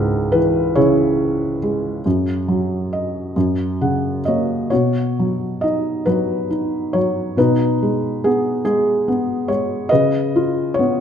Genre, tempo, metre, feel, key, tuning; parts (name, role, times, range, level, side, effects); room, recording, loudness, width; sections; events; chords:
classical, lyrical solo piano; 46 BPM (dotted quarters); 6/8; uneven beats, rubato; B major; A4 = 440 Hz
felt-muted upright piano; solo; 0.0-11.0 s; C#2 to F#5; -16 LUFS; equal
moderate recital hall reverb, RT60 1.4 s; minimal, uncompressed stereo recording; -16 LUFS; side -8 dB against mid
0.0-4.7 A section; 4.7-11.0 B section
felt piano fill 3.4-4.7
0.0 C#m; 2.1 Emaj13/F#; 3.4 F#; 4.7 B; 7.4 G#m/B; 9.9 C#7